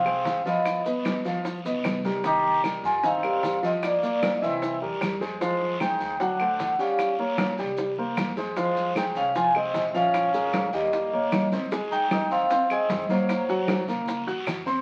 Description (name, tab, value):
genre	Afro-Cuban jazz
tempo	152 BPM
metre	4/4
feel	straight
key	F minor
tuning	A4 = 444 Hz
part	vibraphone with medium mallets	melody	0.0-13.8 s	C5 to Bb5	-28 LUFS	equal	none
part	melodica	second line	0.0-13.8 s	Gb3 to G4	-35 LUFS	equal	none
part	warm concert grand piano	accompaniment	0.0-14.8 s	Eb3 to Ab6	-30 LUFS	equal	none
part	upright bass	bass	0.0-14.8 s	G1 to G2	-48 LUFS	equal	none
part	claves	percussion	0.1-14.7 s	none	-39 LUFS	equal	none
part	congas	percussion	0.1-14.7 s	none	-34 LUFS	equal	none
part	bongos	percussion	0.3-14.7 s	none	-38 LUFS	equal	none
part	guiro	percussion	0.3-14.8 s	none	-43 LUFS	equal	none
part	maracas	percussion	0.3-14.8 s	none	-50 LUFS	equal	none
room	wet club reverb, RT60 0.8 s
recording	very old 78 rpm record, vinyl crackle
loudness	-25 LUFS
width	mono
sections	0.0-11.7 A section; 11.7-14.8 B section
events	none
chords	0.0 Fm7; 0.7 G7b13; 2.2 Cm7; 3.8 Gm7; 4.6 C7; 5.4 Fm9; 6.2 D7; 7.0 Gdim; 7.8 C5; 8.6 Fm; 10.1 Bbm7; 10.9 Eb7; 11.7 Abmaj9; 13.3 Gb